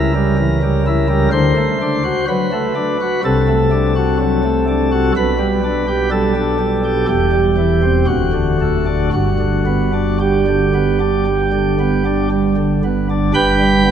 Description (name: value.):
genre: classical, chorale-style piece for pipe organ.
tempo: 55-64 BPM.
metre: 4/4.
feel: rubato.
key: G major.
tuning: A4 = 441 Hz.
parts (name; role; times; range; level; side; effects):
pipe organ, sparkling flutes; solo; 0.0-13.9 s; D1 to B5; -13 LUFS; equal; none.
room: wet church reverb, RT60 3.7 s.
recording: none.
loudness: -13 LUFS.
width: side -8 dB against mid.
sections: 0.0-13.4 A section.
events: none.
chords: 0.0 C#dim7; 1.3 D; 3.2 D7/C; 5.2 G/B; 7.1 C/E; 8.1 D; 9.1 G.